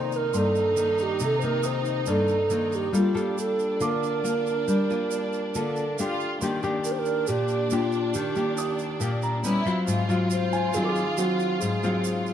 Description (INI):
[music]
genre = bossa nova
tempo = 138 BPM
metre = 4/4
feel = straight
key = Eb major from 6.4 s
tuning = A4 = 440 Hz
[part]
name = mellow wooden-headed alto flute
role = melody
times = 0.0-12.3 s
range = F4 to C5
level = -26 LUFS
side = right 3 dB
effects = none
[part]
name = warm studio violin section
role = second line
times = 0.0-12.3 s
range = D4 to F4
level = -32 LUFS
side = equal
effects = none
[part]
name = nylon-string guitar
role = accompaniment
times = 0.0-12.3 s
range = G2 to A4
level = -26 LUFS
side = left 2 dB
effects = none
[part]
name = warm concert grand piano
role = accompaniment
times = 0.0-12.3 s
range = G5 to Eb6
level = -36 LUFS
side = right 3 dB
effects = none
[part]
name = tube shaker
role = percussion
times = 0.1-12.3 s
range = none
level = -40 LUFS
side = right 8 dB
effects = none
[sound]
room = moderate echo chamber reverb, RT60 2.5 s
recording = dark, warm production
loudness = -23 LUFS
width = side -9 dB against mid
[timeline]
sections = 0.0-6.4 A section; 6.4-12.3 B section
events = none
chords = 0.0 Cm7; 2.9 Gm9; 6.0 Dmadd11/A; 6.4 Ebmaj7; 9.4 Gb7#11; 9.9 Ab6